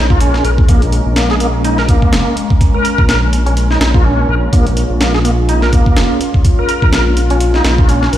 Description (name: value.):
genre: breakbeat, breaks.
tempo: 125 BPM.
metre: 4/4.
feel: swing 57% on 16ths.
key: unclear.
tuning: A4 = 445 Hz.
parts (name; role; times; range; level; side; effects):
phased analog pad; sustained chords; 0.0-8.2 s; Ab3 to Bb4; -20 LUFS; left 1 dB; phaser, chorus, sidechain pumping.
bright tonewheel organ; riff; 0.0-8.2 s; Bb3 to Bb4; -17 LUFS; equal; overdrive, chorus vibrato, fast rotary speaker, tape echo.
dark detuned saw bass; bass; 0.0-8.2 s; F1 to Bb1; -14 LUFS; equal; none.
breakbeat sampler-style drum kit; drums; 0.1-8.2 s; hi-hat, kick drum, snare drum; -13 LUFS; equal; small room ambience.
room: light reverb, digital ambience.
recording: played on a big sound system in a bare room, stone room reverb.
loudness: -10 LUFS.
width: side -12 dB against mid.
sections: 0.0-8.2 A section.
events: none.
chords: 0.0 Bbm7.